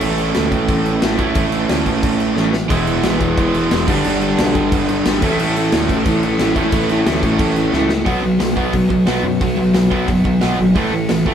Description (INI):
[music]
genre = punk rock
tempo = 179 BPM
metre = 4/4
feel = straight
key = A major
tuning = A4 = 440 Hz
[part]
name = distorted electric guitar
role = riff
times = 0.0-11.3 s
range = E2 to B3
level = -21 LUFS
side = left 6 dB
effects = distortion
[part]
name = overdriven electric guitar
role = riff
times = 0.0-11.3 s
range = G2 to E4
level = -18 LUFS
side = right 5 dB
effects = none
[part]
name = growling picked electric bass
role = bass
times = 0.0-11.3 s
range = E1 to F#2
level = -24 LUFS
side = left 1 dB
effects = overdrive
[part]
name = big rock drum kit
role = drums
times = 0.0-11.3 s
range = crash cymbal, hi-hat, kick drum, snare drum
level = -20 LUFS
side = equal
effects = none
[part]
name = crunchy overdriven guitar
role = riff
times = 2.7-11.3 s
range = E2 to B3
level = -20 LUFS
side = left 1 dB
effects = none
[sound]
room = moderate studio reverb, RT60 0.6 s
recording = band playing live in one room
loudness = -14 LUFS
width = side -8 dB against mid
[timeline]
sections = 0.0-8.1 A section; 8.1-11.3 B section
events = drum fill 2.4-2.7, 7.7-8.1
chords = 0.0 A; 2.7 E; 3.9 G; 5.2 A; 8.1 B5; 10.8 A5